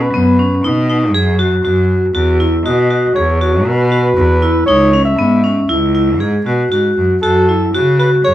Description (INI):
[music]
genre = contemporary instrumental, chamber music in an uneven meter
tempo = 118 BPM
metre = 5/4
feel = straight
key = C# minor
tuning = A4 = 440 Hz
[part]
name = warm flugelhorn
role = melody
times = 0.0-8.3 s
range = A4 to E5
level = -16 LUFS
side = equal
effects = none
[part]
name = vibraphone with hard mallets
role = arpeggios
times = 0.0-8.3 s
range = B3 to G#4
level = -14 LUFS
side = equal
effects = none
[part]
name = bright cello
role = bass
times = 0.0-8.3 s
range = C#2 to C#3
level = -15 LUFS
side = equal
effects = none
[sound]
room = light reverb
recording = dark, warm production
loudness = -11 LUFS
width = side -13 dB against mid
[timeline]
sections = 0.0-8.3 A section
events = none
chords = 0.0 B; 2.1 Esus2; 4.7 C#m; 7.2 F#m